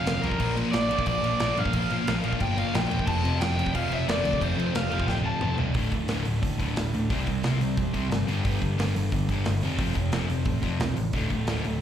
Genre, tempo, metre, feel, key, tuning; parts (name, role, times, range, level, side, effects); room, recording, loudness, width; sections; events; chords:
punk rock; 178 BPM; 4/4; straight; D dorian from 5.8 s; A4 = 439 Hz
overdriven electric guitar; melody; 0.0-5.6 s; Bb4 to A5; -29 LUFS; right 1 dB; slapback echo
crunchy overdriven guitar; riff; 0.0-11.8 s; D2 to C4; -30 LUFS; left 7 dB; slapback echo
sludgy distorted guitar; riff; 0.0-11.8 s; D2 to C4; -33 LUFS; right 8 dB; overdrive
picked electric bass; bass; 0.1-11.8 s; D1 to Bb2; -29 LUFS; equal
big rock drum kit; drums; 0.1-11.7 s; crash cymbal, hi-hat, kick drum, snare drum, toms; -31 LUFS; equal
distorted electric guitar; riff; 0.4-11.8 s; D2 to C5; -34 LUFS; right 1 dB; distortion, slapback echo
small room ambience; live gig heard through the venue's PA, club reverb; -24 LUFS; side -10 dB against mid
0.0-5.8 A section; 5.8-11.8 B section
drum fill 5.1-5.8
0.4 Bb; 3.1 F; 5.8 Dm; 7.1 C; 8.3 G; 9.6 F; 11.1 Dm